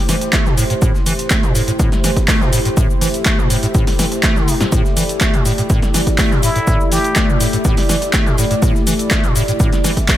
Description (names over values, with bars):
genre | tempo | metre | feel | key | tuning
acid house | 123 BPM | 4/4 | straight | A phrygian | A4 = 440 Hz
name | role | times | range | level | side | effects
warm analog pad | sustained chords | 0.0-10.2 s | A3 to D5 | -21 LUFS | equal | chorus, sidechain pumping
acid bass, square | riff | 0.1-10.2 s | A2 to A3 | -19 LUFS | equal | tube saturation, lush chorus, cassette tape, sidechain pumping
breakbeat sampler-style drum kit | drums | 0.1-10.2 s | hi-hat, shaker, snare drum | -31 LUFS | left 1 dB | none
punchy analog drum machine | drums | 0.1-10.2 s | cabasa, handclaps, hi-hat, snare drum | -20 LUFS | equal | overdrive
electronic kick drum | drums | 0.3-10.2 s | none | -16 LUFS | equal | overdrive
trumpet with plunger mute | melody | 6.4-7.3 s | E4 to G4 | -24 LUFS | left 1 dB | ping-pong delay
room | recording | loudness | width
light reverb | none | -13 LUFS | side -13 dB against mid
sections
0.0-10.2 A section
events
none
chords
0.0 Am7